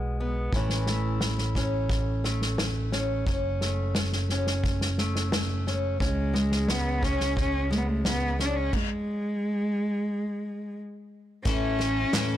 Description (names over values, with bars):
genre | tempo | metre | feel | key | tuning
indie folk with a building arrangement | 88 BPM | 4/4 | straight | A major | A4 = 437 Hz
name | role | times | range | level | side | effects
fingerpicked steel-string acoustic guitar | accompaniment | 0.0-8.7 s | E2 to F#4 | -31 LUFS | left 1 dB | none
fingered electric bass | bass | 0.0-12.4 s | F#1 to A2 | -29 LUFS | equal | none
unplugged drum kit | drums | 0.5-12.3 s | crash cymbal, kick drum, snare drum | -29 LUFS | equal | soft clipping on snare
dark cello | melody | 6.0-12.4 s | G#3 to D4 | -28 LUFS | equal | none
picked twelve-string acoustic guitar | accompaniment | 11.5-12.4 s | A2 to A4 | -31 LUFS | left 8 dB | none
group handclap | percussion | 12.1-12.3 s | none | -33 LUFS | right 6 dB | none
room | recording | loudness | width
small room ambience | blown-out, overdriven recording, overdrive | -25 LUFS | side -12 dB against mid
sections
0.0-11.4 A section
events
stop 8.7-11.4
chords
0.0 Eadd9/B; 0.5 A; 3.3 F#m; 6.0 C#m; 8.7 N.C.; 11.4 A